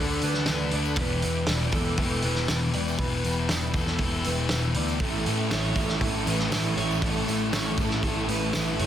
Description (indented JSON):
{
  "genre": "rock, shoegaze and dream pop",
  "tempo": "119 BPM",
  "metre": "4/4",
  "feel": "straight",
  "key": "A mixolydian",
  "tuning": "A4 = 440 Hz",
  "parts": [
    { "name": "analog string pad", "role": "sustained chords", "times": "0.0-8.9 s", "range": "A4 to E6", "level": "-37 LUFS", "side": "right 2 dB", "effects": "ensemble chorus" },
    { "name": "electric guitar through a small old amp", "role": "arpeggios", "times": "0.0-8.9 s", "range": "A4 to D5", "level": "-34 LUFS", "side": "right 4 dB", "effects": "lush chorus, slapback echo" },
    { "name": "thick fuzz guitar", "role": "riff", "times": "0.0-8.9 s", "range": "E2 to D4", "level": "-28 LUFS", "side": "left 5 dB", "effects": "distortion, wide subtle chorus" },
    { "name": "vintage muted picked electric bass", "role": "bass", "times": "0.0-8.9 s", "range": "E1 to A2", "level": "-30 LUFS", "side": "right 1 dB", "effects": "none" },
    { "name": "loose indie drum kit", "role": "drums", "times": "0.2-8.9 s", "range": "hi-hat, kick drum, snare drum", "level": "-29 LUFS", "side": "right 1 dB", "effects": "none" },
    { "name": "tambourine", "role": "percussion", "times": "0.2-8.7 s", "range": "none", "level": "-43 LUFS", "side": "right 9 dB", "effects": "none" },
    { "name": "overdriven semi-hollow guitar", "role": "riff", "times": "5.0-8.9 s", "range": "A2 to E4", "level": "-31 LUFS", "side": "right 12 dB", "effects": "reverse reverb" }
  ],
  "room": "light reverb, studio ambience",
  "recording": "dense, heavily limited modern master",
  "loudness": "-23 LUFS",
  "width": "side -10 dB against mid",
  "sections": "0.0-8.9 A section",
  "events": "none",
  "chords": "0.0 D6; 1.0 Em7; 5.0 A7"
}